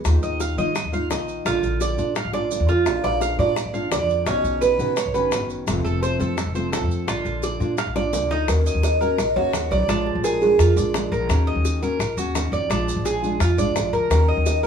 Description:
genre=latin, Cuban son and guajira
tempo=171 BPM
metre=4/4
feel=straight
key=Eb minor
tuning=A4 = 440 Hz
part: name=nylon-string guitar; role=accompaniment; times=0.0-14.7 s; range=B2 to F#4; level=-27 LUFS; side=left 1 dB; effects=none
part: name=upright bass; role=bass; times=0.0-14.7 s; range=F1 to Eb3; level=-24 LUFS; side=equal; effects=none
part: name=bongos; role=percussion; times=0.1-14.6 s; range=none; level=-29 LUFS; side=left 4 dB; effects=none
part: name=maracas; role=percussion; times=0.1-14.7 s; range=none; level=-35 LUFS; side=right 4 dB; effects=none
part: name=Cuban tres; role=arpeggios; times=0.2-14.7 s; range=C#4 to F5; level=-25 LUFS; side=right 3 dB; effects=none
part: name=buzzing kalimba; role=melody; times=2.9-5.5, 8.5-11.1, 14.1-14.7 s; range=Ab4 to F5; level=-23 LUFS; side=right 3 dB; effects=none
room=moderate studio reverb, RT60 0.5 s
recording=band playing live in one room, small room ambience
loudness=-19 LUFS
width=side -7 dB against mid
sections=0.0-8.5 A section; 8.5-14.7 B section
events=drum fill 2.3-2.9, 8.0-8.5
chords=0.1 Ebsus2; 1.5 Bb; 4.3 Badd9; 5.7 F; 7.1 Bb; 8.5 Ebm7; 9.9 Bb7; 11.3 Ebm7; 12.7 Bb7; 14.1 Ebm7

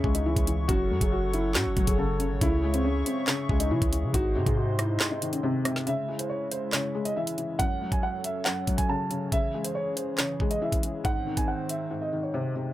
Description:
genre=hip hop, drill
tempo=139 BPM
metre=4/4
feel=half-time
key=C# harmonic minor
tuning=A4 = 442 Hz
part: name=dark concert grand piano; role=melody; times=0.0-12.7 s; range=B#3 to A5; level=-30 LUFS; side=right 1 dB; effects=low-pass filter
part: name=felt-muted upright piano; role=accompaniment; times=0.0-12.7 s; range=F#2 to G#3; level=-31 LUFS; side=left 3 dB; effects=low-pass filter
part: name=hollow soft pad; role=sustained chords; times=0.0-12.7 s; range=D#3 to C#6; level=-36 LUFS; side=equal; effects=chorus
part: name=long sustained 808-style bass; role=bass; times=0.0-5.0 s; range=F#1 to C#3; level=-28 LUFS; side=equal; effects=none
part: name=drill drum kit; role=drums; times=0.0-11.8 s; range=handclaps, hi-hat, kick drum, rim click, snare drum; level=-28 LUFS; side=equal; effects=none
room=little or no reverb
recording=none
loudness=-25 LUFS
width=side -14 dB against mid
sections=0.0-5.9 A section; 5.9-12.7 B section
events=kick muted 5.0-5.9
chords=0.0 C#m; 0.7 F#m; 2.4 C#m; 4.1 G#; 5.9 C#m; 7.6 F#m; 9.3 C#m; 11.0 G#

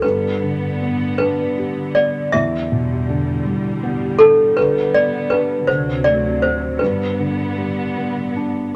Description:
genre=children's music, lullaby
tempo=53 BPM (dotted quarters)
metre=6/8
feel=rubato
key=G major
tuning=A4 = 440 Hz
part: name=toy piano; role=melody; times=0.0-8.3 s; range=A4 to E5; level=-18 LUFS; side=equal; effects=none
part: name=felt-muted upright piano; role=accompaniment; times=0.0-8.8 s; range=E2 to G4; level=-24 LUFS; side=equal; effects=none
part: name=warm studio string section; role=sustained chords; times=0.0-8.8 s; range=D2 to B3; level=-27 LUFS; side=equal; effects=none
room=moderate studio reverb, RT60 0.5 s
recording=none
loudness=-18 LUFS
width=mono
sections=0.0-8.8 A section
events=none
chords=0.0 G; 2.3 Em7; 4.6 G/D; 5.7 D7; 6.8 G

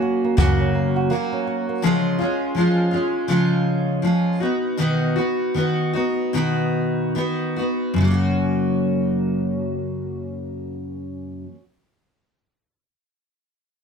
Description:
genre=acoustic pop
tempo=70-83 BPM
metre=4/4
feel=swing 60% on 16ths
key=F# major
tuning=A4 = 442 Hz
part: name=picked steel-string acoustic guitar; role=accompaniment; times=0.0-11.6 s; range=F#2 to F#4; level=-19 LUFS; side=equal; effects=double-tracked left and right
part: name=flamenco guitar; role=arpeggios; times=0.0-2.4 s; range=A#3 to F#4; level=-28 LUFS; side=right 9 dB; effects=tape echo
part: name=kick drum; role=drums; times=0.4-0.6 s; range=none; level=-19 LUFS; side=equal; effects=none
room=moderate studio reverb, RT60 0.5 s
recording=none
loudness=-19 LUFS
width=side -6 dB against mid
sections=0.0-8.0 A section; 8.0-11.4 B section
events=slowing down 1.8-8.0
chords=0.0 F#; 1.8 C#; 4.4 B; 8.0 F#

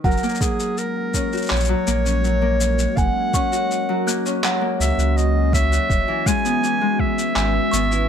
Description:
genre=folktronica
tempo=82 BPM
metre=4/4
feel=straight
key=F# mixolydian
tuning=A4 = 440 Hz
part: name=clear clarinet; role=melody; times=0.0-8.1 s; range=G#4 to G#5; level=-24 LUFS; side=equal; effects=none
part: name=music box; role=second line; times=0.0-8.1 s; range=F#5 to F#6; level=-30 LUFS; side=right 4 dB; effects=digital delay
part: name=Celtic harp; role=arpeggios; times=0.0-8.1 s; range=E3 to F#4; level=-23 LUFS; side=left 2 dB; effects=tape echo
part: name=warm sub bass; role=bass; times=0.0-8.1 s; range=E1 to C#2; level=-21 LUFS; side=right 1 dB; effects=none
part: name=electronic kick drum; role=drums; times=0.0-7.1 s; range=none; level=-22 LUFS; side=right 1 dB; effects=overdrive
part: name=warbly tape-like pad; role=sustained chords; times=1.0-8.1 s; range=G#3 to B4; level=-28 LUFS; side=equal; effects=chorus, built-in reverb, phaser
part: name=electronic shaker and handclaps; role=drums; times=0.1-8.1 s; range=none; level=-27 LUFS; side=left 2 dB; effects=none
room=light reverb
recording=none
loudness=-17 LUFS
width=side -8 dB against mid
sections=0.0-8.1 A section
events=none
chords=0.0 F#; 5.9 E

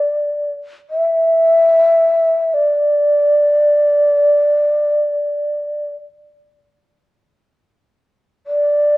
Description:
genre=japanese traditional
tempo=free time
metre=none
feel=none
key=unclear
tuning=A4 = 440 Hz
part: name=mellow hollow long shakuhachi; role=solo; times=0.0-9.0 s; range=D5 to E5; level=-13 LUFS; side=equal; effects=none
room=moderate recital hall reverb, RT60 1.5 s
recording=worn, warbling old tape, cassette tape, warbly pitch drift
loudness=-12 LUFS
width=side -18 dB against mid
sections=0.0-9.0 A section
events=none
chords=none

